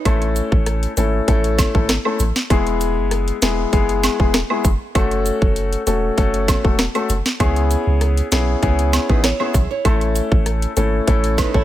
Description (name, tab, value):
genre	dancehall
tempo	98 BPM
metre	4/4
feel	straight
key	unclear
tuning	A4 = 440 Hz
part	flamenco guitar	arpeggios	0.0, 9.1-11.6 s	D#4 to E5	-26 LUFS	right 7 dB	digital delay
part	warm grand piano	accompaniment	0.1-11.6 s	G#3 to A4	-20 LUFS	left 3 dB	none
part	punchy sub bass	bass	0.1-11.6 s	E1 to C#2	-20 LUFS	equal	none
part	island pop drum kit	drums	0.1-11.6 s	hi-hat, kick drum, rim click, snare drum	-18 LUFS	equal	none
part	woodblock and cabasa	percussion	0.1-11.5 s	none	-27 LUFS	right 5 dB	none
room	small room ambience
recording	none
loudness	-15 LUFS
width	side -13 dB against mid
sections	0.0-11.6 A section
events	none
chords	0.1 A; 2.5 E; 5.0 F#m; 7.4 C#m7; 9.8 A